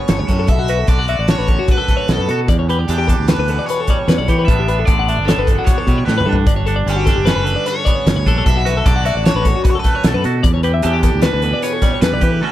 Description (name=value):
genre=math rock and midwest emo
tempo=151 BPM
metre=5/4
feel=straight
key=unclear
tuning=A4 = 442 Hz
part: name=cranked stack guitar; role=melody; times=0.0-12.5 s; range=G4 to E5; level=-22 LUFS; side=equal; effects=overdrive, phaser
part: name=twangy electric guitar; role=accompaniment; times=0.0-12.5 s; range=D2 to G4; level=-23 LUFS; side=right 9 dB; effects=none
part: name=twelve-string electric guitar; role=arpeggios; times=0.0-12.5 s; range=F#4 to F#5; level=-21 LUFS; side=left 8 dB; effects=none
part: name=growling fingered electric bass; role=bass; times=0.1-12.4 s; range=F#1 to E3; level=-18 LUFS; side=equal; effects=overdrive
part: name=loose indie drum kit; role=drums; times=0.1-12.3 s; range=hi-hat, kick drum, snare drum, toms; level=-16 LUFS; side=equal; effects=none
room=little or no reverb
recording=none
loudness=-13 LUFS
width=side -13 dB against mid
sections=0.0-12.5 A section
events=drum fill 6.1-6.5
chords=0.5 Bm7; 2.5 Em7; 4.5 A9sus4; 6.5 Gmaj9#11; 8.5 Bm7; 10.4 Em7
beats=0.10 | 0.50 0.90 1.30 1.70 2.10 | 2.49 2.89 3.29 3.69 4.09 | 4.49 4.88 5.28 5.68 6.08 | 6.47 6.87 7.27 7.67 8.06 | 8.46 8.86 9.25 9.65 10.05 | 10.44 10.84 11.23 11.63 12.02 | 12.42